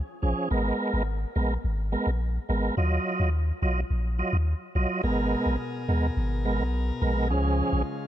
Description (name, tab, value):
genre	dancehall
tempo	106 BPM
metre	4/4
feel	straight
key	G# dorian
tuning	A4 = 440 Hz
part	tonewheel organ	accompaniment	0.2-7.8 s	E#3 to D#5	-28 LUFS	right 2 dB	overdrive, chorus vibrato, stopped rotary speaker
part	punchy sub bass	bass	0.2-7.8 s	G#1 to D#2	-26 LUFS	equal	none
part	chamber organ, principal chorus	sustained chords	5.0-8.1 s	B2 to A#4	-33 LUFS	left 2 dB	none
room	small room ambience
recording	dark, warm production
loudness	-24 LUFS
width	side -12 dB against mid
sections	0.0-5.0 A section; 5.0-8.1 B section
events	none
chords	0.0 C#; 0.5 G#madd9; 2.8 D#madd9; 5.0 G#madd9; 7.3 C#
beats	| 0.51 1.08 1.64 2.21 | 2.77 3.34 3.91 4.47 | 5.04 5.60 6.17 6.74 | 7.30 7.87